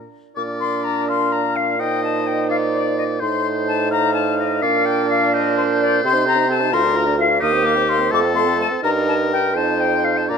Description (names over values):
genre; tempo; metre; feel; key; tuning
quick classical-period movement for wind quintet; 85 BPM (dotted quarters); 6/8; rubato; Bb major; A4 = 435 Hz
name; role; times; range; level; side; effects
silver concert flute; melody; 0.0-10.4 s; C5 to Eb6; -21 LUFS; left 7 dB; none
clear French horn; accompaniment; 0.0-10.4 s; A3 to F4; -25 LUFS; right 3 dB; none
mellow bassoon; bass; 0.0-10.4 s; D2 to C3; -22 LUFS; right 3 dB; none
clear oboe; second line; 0.4-10.4 s; G4 to F5; -23 LUFS; left 2 dB; none
mellow clarinet; accompaniment; 0.4-10.4 s; A4 to D5; -26 LUFS; right 12 dB; none
room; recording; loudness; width
light reverb; close, detailed microphones; -16 LUFS; side -6 dB against mid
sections
0.4-10.4 A section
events
none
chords
0.4 Bb; 1.8 Cm7/Bb; 3.2 F7/A; 4.6 Bb; 6.0 Adim/C; 6.7 Bb/D; 7.4 Cm7/Eb; 8.1 F; 8.8 Eb/G; 9.6 F5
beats
| 0.36 1.09 | 1.80 2.50 | 3.21 3.92 | 4.62 5.33 | 6.04 6.73 | 7.42 8.12 | 8.84 9.56 | 10.30